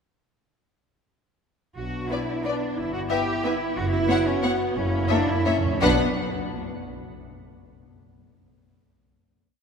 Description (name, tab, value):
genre	classical, orchestral ballroom waltz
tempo	163-195 BPM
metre	3/4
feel	rubato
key	B minor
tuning	A4 = 439 Hz
part	warm French horn section	sustained chords	1.8-6.0 s	A#3 to F#4	-29 LUFS	left 3 dB	none
part	warm studio cello section	bass	1.8-6.0 s	B3 to G4	-27 LUFS	right 3 dB	none
part	warm studio double bass section	bass	1.8-6.0 s	F#1 to B1	-30 LUFS	right 2 dB	none
part	rich studio violin section	melody	2.1-6.0 s	D5 to F#5	-30 LUFS	left 6 dB	none
part	warm studio violin section	second line	2.1-6.0 s	B4 to C#5	-32 LUFS	left 4 dB	none
part	warm studio viola section	accompaniment	2.1-6.0 s	A#3 to D4	-31 LUFS	equal	none
part	timpani	percussion	4.8-6.0 s	F#2 to B2	-32 LUFS	equal	none
room	wet church reverb, RT60 3.0 s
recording	recorded in a church or concert hall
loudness	-22 LUFS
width	side -6 dB against mid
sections	1.8-5.8 A section; 5.8-6.9 final chord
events	timpani fill 4.8-5.8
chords	1.8 Bm; 2.8 Em/G; 3.8 F#7sus4; 4.8 F#7; 5.8 Bm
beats	| 1.77 2.10 2.45 | 2.77 3.10 3.44 | 3.77 4.10 4.44 | 4.77 5.11 5.47 | 5.83